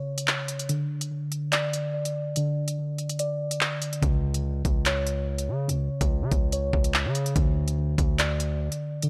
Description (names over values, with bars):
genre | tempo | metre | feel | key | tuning
hip hop, drill | 144 BPM | 4/4 | half-time | unclear | A4 = 441 Hz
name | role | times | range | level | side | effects
muted felt-like synth keys | arpeggios | 0.0-9.1 s | C#3 to D5 | -30 LUFS | equal | chorus, low-pass filter, analog delay
drill drum kit | drums | 0.2-9.1 s | handclaps, hi-hat, kick drum | -28 LUFS | equal | none
distorted 808-style bass | bass | 4.0-8.7 s | C#2 to C#3 | -31 LUFS | equal | distortion
room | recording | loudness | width
little or no reverb | dry, gritty hardware recording | -27 LUFS | mono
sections
0.0-9.1 A section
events
break 0.0-4.0; filter sweep on synth keys 0.0-9.1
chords
none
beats
0.28 | 0.69 1.11 1.52 1.94 | 2.36 2.77 3.19 3.61 | 4.03 4.44 4.86 5.28 | 5.69 6.11 6.53 6.94 | 7.36 7.78 8.19 8.61 | 9.03